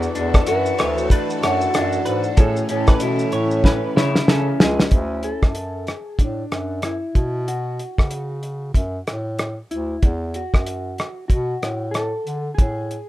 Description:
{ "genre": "indie pop, bedroom pop", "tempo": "94 BPM", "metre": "4/4", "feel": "swing 60% on 16ths", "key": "A major", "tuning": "A4 = 441 Hz", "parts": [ { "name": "direct-recorded clean electric guitar", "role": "second line", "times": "0.0-4.8 s", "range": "G#4 to C#5", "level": "-29 LUFS", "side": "right 3 dB", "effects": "ensemble chorus, analog delay" }, { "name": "electric guitar through a small old amp", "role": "accompaniment", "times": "0.0-5.5 s", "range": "A2 to A4", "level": "-23 LUFS", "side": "left 2 dB", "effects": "wide subtle chorus, warbly pitch drift" }, { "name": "string machine, full ensemble", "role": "sustained chords", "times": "0.0-4.9 s", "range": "E3 to A4", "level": "-29 LUFS", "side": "right 1 dB", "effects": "ensemble chorus" }, { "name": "warm bass clarinet", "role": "bass", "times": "0.0-13.0 s", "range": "C#2 to D3", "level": "-25 LUFS", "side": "equal", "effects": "none" }, { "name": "cloth-damped thuddy drum kit", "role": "drums", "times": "0.0-13.1 s", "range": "hi-hat, kick drum, rim click, shaker, snare drum", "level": "-17 LUFS", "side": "equal", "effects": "none" }, { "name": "mellow electric guitar", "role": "melody", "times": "0.5-13.1 s", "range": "D4 to B4", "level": "-28 LUFS", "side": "equal", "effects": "analog chorus, analog delay" } ], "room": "light reverb", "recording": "rough home demo mix", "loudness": "-18 LUFS", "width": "side -15 dB against mid", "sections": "0.0-4.9 A section; 4.9-13.1 B section", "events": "drum fill 3.6-4.9", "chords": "0.0 E9sus4; 2.4 Amaj7; 4.9 D; 7.2 Bm9; 10.0 E9sus4; 12.6 Amaj7(no3)" }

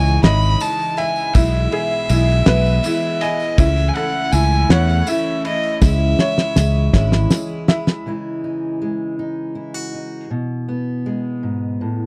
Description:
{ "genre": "indie folk with a building arrangement", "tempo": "54 BPM (dotted quarters)", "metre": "6/8", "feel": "straight", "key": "unclear", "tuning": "A4 = 440 Hz", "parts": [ { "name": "dark fiddle", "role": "melody", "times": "0.0-7.3 s", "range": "D#5 to B5", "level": "-24 LUFS", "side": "equal", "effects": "none" }, { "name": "felt-muted upright piano", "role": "accompaniment", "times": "0.0-8.1 s", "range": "B1 to E5", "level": "-31 LUFS", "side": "equal", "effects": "none" }, { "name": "picked twelve-string acoustic guitar", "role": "accompaniment", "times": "0.0-8.1 s", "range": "B2 to E4", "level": "-29 LUFS", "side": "equal", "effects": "none" }, { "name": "clear upright piano", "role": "arpeggios", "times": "0.0-8.1 s", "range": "E4 to G#5", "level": "-28 LUFS", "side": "equal", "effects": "none" }, { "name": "fingered electric bass", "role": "bass", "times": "0.0-7.3 s", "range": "G#1 to E2", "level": "-18 LUFS", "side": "equal", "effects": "none" }, { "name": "tambourine", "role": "percussion", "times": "0.1-8.0 s", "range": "none", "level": "-38 LUFS", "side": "equal", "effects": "none" }, { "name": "cloth-damped thuddy drum kit", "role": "drums", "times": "0.2-8.0 s", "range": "kick drum, ride cymbal, snare drum", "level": "-17 LUFS", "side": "equal", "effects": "none" }, { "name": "fingerpicked steel-string acoustic guitar", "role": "accompaniment", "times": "8.1-12.1 s", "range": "G#2 to F#4", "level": "-25 LUFS", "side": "equal", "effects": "none" } ], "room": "little or no reverb", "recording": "dry, close 1970s-style studio recording", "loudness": "-18 LUFS", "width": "mono", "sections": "0.0-8.1 A section; 8.1-12.1 B section", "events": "drum fill 5.8-8.1", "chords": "0.0 C#madd9; 1.4 E/B; 3.6 A/C#; 5.8 C#m; 8.1 C#madd9; 10.3 G#m" }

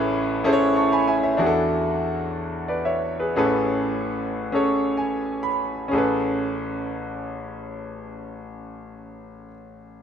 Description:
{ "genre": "gospel", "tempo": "39-64 BPM (dotted quarters)", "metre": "6/8", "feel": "straight", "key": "A major", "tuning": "A4 = 440 Hz", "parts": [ { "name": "bright grand piano", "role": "solo", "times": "0.0-10.0 s", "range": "A1 to C#6", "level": "-22 LUFS", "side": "equal", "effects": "slapback echo" } ], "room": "moderate plate reverb, RT60 3.3 s", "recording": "none", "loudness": "-21 LUFS", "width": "side -8 dB against mid", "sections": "0.0-1.4 A section; 1.4-5.9 B section; 5.9-10.0 C section", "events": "slowing down 1.4-5.9; grand piano fill 4.5-5.9", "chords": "0.0 Amaj9; 1.4 E9sus4; 3.4 Amaj9" }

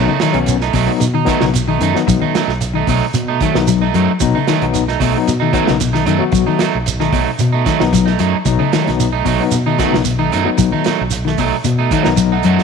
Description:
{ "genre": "afrobeat", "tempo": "113 BPM", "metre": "4/4", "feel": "straight", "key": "B mixolydian", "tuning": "A4 = 438 Hz", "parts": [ { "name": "overdriven tine electric piano", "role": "accompaniment", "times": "0.0-12.6 s", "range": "F#3 to F#5", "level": "-19 LUFS", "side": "left 11 dB", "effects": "medium tremolo" }, { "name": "mellow electric guitar", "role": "arpeggios", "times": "0.0-12.6 s", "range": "B2 to F#3", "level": "-18 LUFS", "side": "left 8 dB", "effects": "analog chorus" }, { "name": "electric guitar at the edge of break-up", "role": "stabs", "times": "0.0-12.6 s", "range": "F#3 to D#4", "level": "-18 LUFS", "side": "right 12 dB", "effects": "none" }, { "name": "fingered electric bass", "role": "bass", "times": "0.0-12.6 s", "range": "B1 to B2", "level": "-20 LUFS", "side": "equal", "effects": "none" }, { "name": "crunchy breakbeat drum kit", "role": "drums", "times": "0.2-12.6 s", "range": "hi-hat, kick drum, snare drum", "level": "-22 LUFS", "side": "right 4 dB", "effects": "none" }, { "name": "shekere", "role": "percussion", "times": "0.2-12.6 s", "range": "none", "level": "-23 LUFS", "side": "right 7 dB", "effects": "none" } ], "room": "moderate echo chamber reverb, RT60 2.0 s, studio reverb", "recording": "1960s-style stereo with parts hard left and right", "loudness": "-12 LUFS", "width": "side -6 dB against mid", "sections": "0.0-12.6 A section", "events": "tine electric piano fill 11.9-12.6", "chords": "0.0 B7" }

